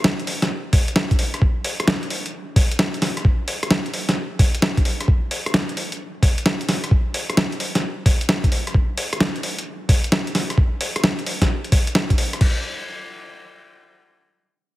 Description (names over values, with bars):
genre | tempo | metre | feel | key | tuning
UK garage | 131 BPM | 4/4 | swing 66% on 16ths | none | none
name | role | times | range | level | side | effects
boom bap sampler-style drum kit | drums | 0.0-12.5 s | crash cymbal, hi-hat, rim click, snare drum | -21 LUFS | equal | none
electronic kick drum | drums | 0.7-12.5 s | none | -17 LUFS | equal | none
room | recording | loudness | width
light reverb | heavily compressed radio sound, multiband compression | -18 LUFS | side -16 dB against mid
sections
0.0-12.4 A section; 12.4-14.2 B section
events
drop 0.0-12.4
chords
none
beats
0.04 0.50 0.96 | 1.42 1.87 2.33 2.79 | 3.25 3.71 4.16 4.62 | 5.08 5.54 6.00 6.45 | 6.91 7.37 7.83 8.29 | 8.74 9.20 9.66 10.12 | 10.58 11.04 11.49 11.95 | 12.41